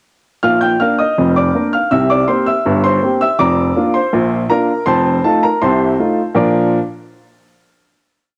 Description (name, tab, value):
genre	ragtime piano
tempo	81 BPM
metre	2/4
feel	straight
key	Bb major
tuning	A4 = 440 Hz
part	clear upright piano	solo	0.4-6.8 s	F1 to G6	-14 LUFS	equal	cassette tape
room	light reverb, studio reverb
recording	home recording on cassette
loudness	-15 LUFS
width	mono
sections	0.4-6.4 A section; 6.4-7.8 final chord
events	none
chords	0.4 Bb; 1.9 C7; 3.4 Bb/F; 4.9 F7; 6.4 Bb